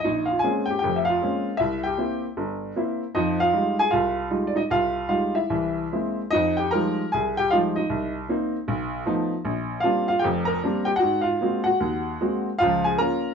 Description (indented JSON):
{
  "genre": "solo jazz",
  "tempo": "153 BPM",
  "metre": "4/4",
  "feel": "swing 65% on 8ths, rubato",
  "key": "F minor",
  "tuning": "A4 = 440 Hz",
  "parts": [
    { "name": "clear upright piano", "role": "solo", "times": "0.0-13.3 s", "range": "F1 to Bb5", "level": "-21 LUFS", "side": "equal", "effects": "none" }
  ],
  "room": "moderate studio reverb, RT60 0.7 s",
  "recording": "band playing live in one room, nothing above 8.0 kHz",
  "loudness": "-21 LUFS",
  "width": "side -6 dB against mid",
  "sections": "0.0-6.3 A section; 6.3-13.3 B section",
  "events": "none",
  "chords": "0.0 Bbm9; 1.6 C7; 3.1 Fm9; 5.5 Caug7; 6.3 Fm9; 7.9 Cm7; 8.7 B7#11; 9.4 Bb69; 11.0 Ab9; 12.6 Db6"
}